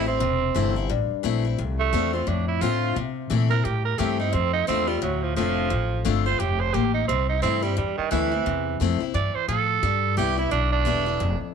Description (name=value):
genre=rockabilly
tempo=175 BPM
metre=4/4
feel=swing 60% on 8ths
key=C mixolydian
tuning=A4 = 439 Hz
part: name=raspy tenor saxophone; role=melody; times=0.0-11.4 s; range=Eb3 to D5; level=-25 LUFS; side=right 11 dB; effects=slapback echo
part: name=picked steel-string acoustic guitar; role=accompaniment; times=0.0-11.5 s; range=F2 to F4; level=-27 LUFS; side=left 14 dB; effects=none
part: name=upright bass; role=bass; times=0.0-11.4 s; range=E1 to C3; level=-26 LUFS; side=left 1 dB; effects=none
room=studio reverb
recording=1960s-style stereo with parts hard left and right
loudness=-21 LUFS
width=side -6 dB against mid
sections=0.0-11.5 A section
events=tenor saxophone solo 0.0-11.5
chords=0.0 C6; 1.6 F6; 3.0 C6; 4.3 F6; 7.1 C6; 9.8 G6